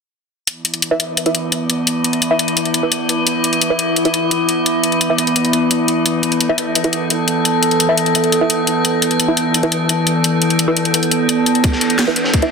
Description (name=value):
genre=dark technical drum and bass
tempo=172 BPM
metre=4/4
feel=straight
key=unclear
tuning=A4 = 440 Hz
part: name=metallic inharmonic drone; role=sustained chords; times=0.7-12.5 s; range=E3 to A4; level=-16 LUFS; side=equal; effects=chorus, built-in reverb, sidechain pumping
part: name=drum and bass drum kit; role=drums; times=0.5-12.5 s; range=hi-hat, snare drum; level=-17 LUFS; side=left 2 dB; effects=overdrive, small room ambience
part: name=filtered dub chord stab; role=stabs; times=0.9-12.5 s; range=E4 to E5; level=-21 LUFS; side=right 1 dB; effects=phaser, ping-pong delay
part: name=crunchy breakbeat drum kit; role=drums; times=11.6-12.5 s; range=ride cymbal, snare drum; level=-22 LUFS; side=equal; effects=high-pass filter on cymbals, small room ambience, high-pass filter on snare, high-pass filter on room
part: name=electronic kick drum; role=drums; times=11.6-12.4 s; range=none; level=-16 LUFS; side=equal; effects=overdrive, small room ambience
room=moderate lush hall reverb, RT60 2.1 s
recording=dense, heavily limited modern master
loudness=-14 LUFS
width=side -5 dB against mid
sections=0.5-12.5 A section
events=none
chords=0.5 E5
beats=| 0.47 0.82 1.17 1.52 | 1.87 2.22 2.57 2.92 | 3.27 3.62 3.96 4.31 | 4.66 5.01 5.36 5.71 | 6.06 6.41 6.75 7.10 | 7.45 7.80 8.15 8.50 | 8.85 9.20 9.54 9.89 | 10.24 10.59 10.94 11.29 | 11.64 11.99 12.34